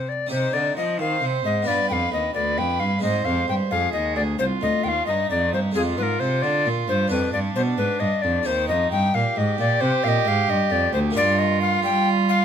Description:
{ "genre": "classical, baroque-style sonata movement with continuo", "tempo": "88 BPM (dotted quarters)", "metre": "12/8", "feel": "straight", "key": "C minor", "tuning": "A4 = 440 Hz", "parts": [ { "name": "tenor recorder", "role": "melody", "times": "0.0-12.4 s", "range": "Ab4 to G5", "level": "-23 LUFS", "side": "left 4 dB", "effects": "none" }, { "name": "warm violin", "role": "second line", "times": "0.0-12.4 s", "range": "D4 to C5", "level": "-27 LUFS", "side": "right 8 dB", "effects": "none" }, { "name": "harpsichord", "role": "accompaniment", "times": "0.0-12.4 s", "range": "C2 to G4", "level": "-28 LUFS", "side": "left 1 dB", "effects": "none" }, { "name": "rich cello", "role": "bass", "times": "0.0-12.4 s", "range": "C2 to G3", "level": "-25 LUFS", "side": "right 2 dB", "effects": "none" } ], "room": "moderate small room reverb, RT60 0.5 s", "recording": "none", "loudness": "-19 LUFS", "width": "side -8 dB against mid", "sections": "0.3-12.4 A section", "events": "none", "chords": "0.3 Cm; 1.7 G7; 3.0 Ab; 5.8 Dm7b5/F; 7.1 G7/F; 8.5 Cm/Eb; 11.2 Eb/G", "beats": "| 0.31 1.00 1.68 2.36 | 3.04 3.72 4.40 5.08 | 5.76 6.44 7.12 7.79 | 8.47 9.15 9.82 10.49 | 11.16 11.84" }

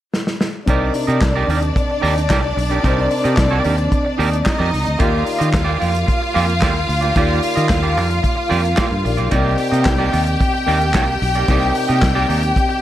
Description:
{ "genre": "disco", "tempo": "111 BPM", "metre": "4/4", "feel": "straight", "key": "C minor", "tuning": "A4 = 436 Hz", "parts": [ { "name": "warm soul drum kit", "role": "drums", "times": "0.1-12.7 s", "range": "handclaps, hi-hat, kick drum, snare drum", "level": "-20 LUFS", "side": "equal", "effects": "none" }, { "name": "clear studio string section", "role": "second line", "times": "0.7-12.8 s", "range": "D4 to G5", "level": "-20 LUFS", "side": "left 1 dB", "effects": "analog delay" }, { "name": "dark baby grand piano", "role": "accompaniment", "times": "0.7-12.8 s", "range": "C3 to D5", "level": "-24 LUFS", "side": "left 2 dB", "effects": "none" }, { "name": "semi-hollow electric guitar", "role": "accompaniment", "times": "0.7-12.7 s", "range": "Bb3 to Eb5", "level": "-22 LUFS", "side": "right 5 dB", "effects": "none" }, { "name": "fingered electric bass", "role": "bass", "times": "0.7-12.5 s", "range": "Bb1 to Eb3", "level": "-19 LUFS", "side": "equal", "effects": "none" } ], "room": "light reverb, studio ambience", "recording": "none", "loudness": "-14 LUFS", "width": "side -12 dB against mid", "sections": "0.7-12.8 A section", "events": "drum fill 0.1-0.7", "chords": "0.0 N.C.; 0.7 Cm9; 5.0 Ebmaj9; 9.3 Cm9", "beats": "0.13 | 0.68 1.22 1.76 2.30 | 2.84 3.38 3.92 4.46 | 5.00 5.54 6.09 6.63 | 7.17 7.71 8.25 8.79 | 9.33 9.87 10.41 10.95 | 11.49 12.03 12.56" }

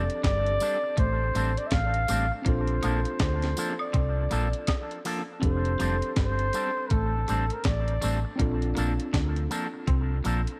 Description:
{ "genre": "lovers rock reggae", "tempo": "81 BPM", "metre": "4/4", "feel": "swing 61% on 16ths", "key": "F major", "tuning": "A4 = 440 Hz", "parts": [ { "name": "mellow flugelhorn", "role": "melody", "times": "0.0-8.2 s", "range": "A4 to F5", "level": "-33 LUFS", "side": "equal", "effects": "tape echo" }, { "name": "tine electric piano", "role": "accompaniment", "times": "0.0-10.6 s", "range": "C4 to A4", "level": "-38 LUFS", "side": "equal", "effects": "dub echo" }, { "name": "electric guitar with an envelope filter", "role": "stabs", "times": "0.0-10.4 s", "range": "F3 to A4", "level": "-37 LUFS", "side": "equal", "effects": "dub echo" }, { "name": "vintage muted fingered electric bass", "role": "bass", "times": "0.0-10.4 s", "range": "F1 to D2", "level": "-30 LUFS", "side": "equal", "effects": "none" }, { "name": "crisp 8-bit digital drum machine", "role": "drums", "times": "0.1-10.6 s", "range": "hi-hat, kick drum, snare drum", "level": "-31 LUFS", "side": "equal", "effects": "dub echo" }, { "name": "twangy electric guitar", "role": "riff", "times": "0.2-10.4 s", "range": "F3 to D4", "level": "-42 LUFS", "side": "equal", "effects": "spring reverb, dub echo" }, { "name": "tambourine and woodblock", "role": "percussion", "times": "0.6-10.5 s", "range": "none", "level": "-42 LUFS", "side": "equal", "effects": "none" } ], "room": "light reverb", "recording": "none", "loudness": "-27 LUFS", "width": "mono", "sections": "0.0-10.6 A section", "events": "none", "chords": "0.0 F69; 2.5 Bbmaj7; 5.4 F69; 8.4 Bbmaj7", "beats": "0.24 0.98 1.72 | 2.46 3.21 3.95 4.69 | 5.43 6.17 6.91 7.65 | 8.39 9.13 9.88" }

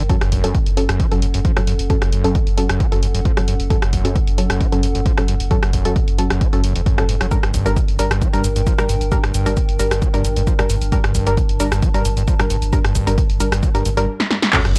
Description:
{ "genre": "driving peak-time techno", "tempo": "133 BPM", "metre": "4/4", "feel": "straight", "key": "unclear", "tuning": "A4 = 439 Hz", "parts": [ { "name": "screaming distorted acid line", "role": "riff", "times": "0.0-14.8 s", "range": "E#2 to G3", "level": "-27 LUFS", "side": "equal", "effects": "distortion, chorus, sidechain pumping" }, { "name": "saturated sub bass", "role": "bass", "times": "0.0-14.8 s", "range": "F#1 to G1", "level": "-24 LUFS", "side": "equal", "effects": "tube saturation, sidechain pumping, low-pass filter" }, { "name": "warbly tape-like pad", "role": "texture", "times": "0.0-14.8 s", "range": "C#4 to A5", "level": "-32 LUFS", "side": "equal", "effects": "chorus, built-in reverb, sidechain pumping" }, { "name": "filtered dub chord stab", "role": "stabs", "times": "0.1-14.6 s", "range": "F#3 to Bb4", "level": "-25 LUFS", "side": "equal", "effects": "chorus, vintage 12-bit sampler grit, sidechain pumping, analog delay" }, { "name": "electronic kick drum", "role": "drums", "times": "0.1-14.8 s", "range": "none", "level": "-21 LUFS", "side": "equal", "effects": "none" }, { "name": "punchy analog drum machine", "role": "drums", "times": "0.1-14.8 s", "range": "crash cymbal, handclaps, hi-hat, rim click, shaker, snare drum", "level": "-26 LUFS", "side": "equal", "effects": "sidechain pumping on hats, sidechain pumping on perc, sidechain pumping on cymbals" }, { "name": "deep dark ambient pad", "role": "drone", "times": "14.5-14.8 s", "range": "none", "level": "barely audible", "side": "none", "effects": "none" }, { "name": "impact", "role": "sound effects", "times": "14.5-14.8 s", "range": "none", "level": "-27 LUFS", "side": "equal", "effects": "none" } ], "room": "little or no reverb", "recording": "dry, gritty hardware recording, cassette tape", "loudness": "-18 LUFS", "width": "mono", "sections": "0.0-14.5 A section", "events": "drum fill 14.2-14.5; impact 14.5", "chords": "0.1 F#m; 7.3 Gm", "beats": "| 0.10 0.55 1.00 1.45 | 1.90 2.35 2.80 3.25 | 3.70 4.16 4.61 5.06 | 5.51 5.96 6.41 6.86 | 7.31 7.76 8.22 8.67 | 9.12 9.57 10.02 10.47 | 10.92 11.37 11.82 12.28 | 12.73 13.18 13.63 14.08 | 14.53" }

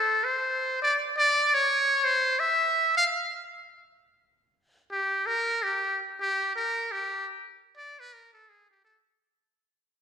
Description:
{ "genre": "jazz", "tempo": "168 BPM", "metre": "3/4", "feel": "swing 62% on 8ths", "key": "unclear", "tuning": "A4 = 437 Hz", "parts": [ { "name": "trumpet with metal mute", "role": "solo", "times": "0.0-9.0 s", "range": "G4 to F5", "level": "-24 LUFS", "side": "equal", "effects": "none" } ], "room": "wet scoring stage reverb, RT60 1.7 s", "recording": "recorded in a church or concert hall", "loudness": "-24 LUFS", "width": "side -7 dB against mid", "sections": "0.0-4.9 A section; 4.9-9.2 B section", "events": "fade-out 4.9-9.2", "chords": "none", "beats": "0.23 | 0.59 0.95 1.30 | 1.66 2.02 2.38 | 2.73 3.09 3.45 | 3.81 4.17 4.52 | 4.88 5.24 5.60 | 5.96 6.32 6.67 | 7.03 7.39 7.75 | 8.11 8.47 8.82" }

